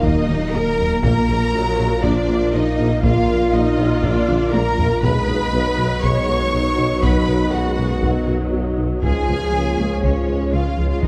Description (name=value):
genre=cinematic, hybrid orchestral and electronic film score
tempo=120 BPM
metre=4/4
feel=straight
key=unclear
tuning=A4 = 439 Hz
part: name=warm symphonic violin section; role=melody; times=0.0-11.1 s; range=Db5 to Db6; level=-33 LUFS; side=equal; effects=none
part: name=warm symphonic violin section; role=second line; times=0.0-11.1 s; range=Db5 to Db6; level=-30 LUFS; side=equal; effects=none
part: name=warm symphonic viola section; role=accompaniment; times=0.0-11.1 s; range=F3 to F4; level=-29 LUFS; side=equal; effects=none
part: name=chorused pulse-width pad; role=sustained chords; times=0.0-11.1 s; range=F3 to D#5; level=-30 LUFS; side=equal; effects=none
part: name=dark French horn section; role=sustained chords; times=0.0-11.1 s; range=Bb3 to F4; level=-29 LUFS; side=equal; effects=none
part: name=warm trombone section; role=sustained chords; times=0.0-11.1 s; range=F#2 to F4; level=-31 LUFS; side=equal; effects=none
part: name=warbly dusty pluck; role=arpeggios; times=0.0-11.1 s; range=Db3 to B4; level=-32 LUFS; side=equal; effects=none
part: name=round analog bass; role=riff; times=0.0-11.1 s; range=Db2 to B3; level=-28 LUFS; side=equal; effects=none
part: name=clear tuba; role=bass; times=0.0-11.1 s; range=Bb1 to Eb2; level=-30 LUFS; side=equal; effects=none
part: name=dark symphonic double bass section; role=bass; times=0.0-11.1 s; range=Bb1 to Eb2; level=-30 LUFS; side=equal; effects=none
part: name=punchy sub bass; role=bass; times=0.0-11.1 s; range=Eb1 to Db2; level=-28 LUFS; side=equal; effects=none
part: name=rich symphonic cello section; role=bass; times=0.0-11.1 s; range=Db4 to Db5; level=-26 LUFS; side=equal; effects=none
part: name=taiko ensemble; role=drums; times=0.0-11.1 s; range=none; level=-27 LUFS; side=equal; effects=none
room=wet concert hall reverb, RT60 2.0 s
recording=none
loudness=-18 LUFS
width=mono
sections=0.0-11.1 A section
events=drum fill 4.3-5.0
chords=0.0 Ebm; 1.0 Bb; 5.0 B; 9.0 Db